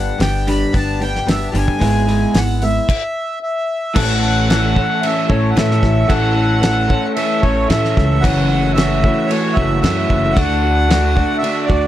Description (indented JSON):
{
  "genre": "folk rock and heartland rock",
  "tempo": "112 BPM",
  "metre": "4/4",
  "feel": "straight",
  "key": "A major",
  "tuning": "A4 = 440 Hz",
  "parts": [
    { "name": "accordion", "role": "melody", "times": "0.0-11.9 s", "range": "C#5 to B5", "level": "-20 LUFS", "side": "equal", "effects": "slapback echo" },
    { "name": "picked old ladder-braced acoustic guitar", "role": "accompaniment", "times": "0.0-11.9 s", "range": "F#2 to A4", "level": "-23 LUFS", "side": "left 6 dB", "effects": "none" },
    { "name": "electric guitar through a small old amp", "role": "riff", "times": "0.0-11.9 s", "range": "F#2 to A4", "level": "-20 LUFS", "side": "right 2 dB", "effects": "none" },
    { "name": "upright bass", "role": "bass", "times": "0.0-11.9 s", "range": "F#1 to A2", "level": "-18 LUFS", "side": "equal", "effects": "none" },
    { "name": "damped 70s drum kit", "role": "drums", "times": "0.2-11.8 s", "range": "crash cymbal, hi-hat, kick drum, snare drum", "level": "-19 LUFS", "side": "equal", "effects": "none" },
    { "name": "tonewheel organ", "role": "sustained chords", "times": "3.9-11.9 s", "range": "A4 to E6", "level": "-30 LUFS", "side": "equal", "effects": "slow rotary speaker, chorus vibrato" }
  ],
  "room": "little or no reverb",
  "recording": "none",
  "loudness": "-13 LUFS",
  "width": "side -12 dB against mid",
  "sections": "0.0-4.0 A section; 4.0-11.9 B section",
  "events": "stop 2.9-4.0",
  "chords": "0.0 G; 1.8 E/G#; 4.0 A; 8.2 F#m7; 10.4 D"
}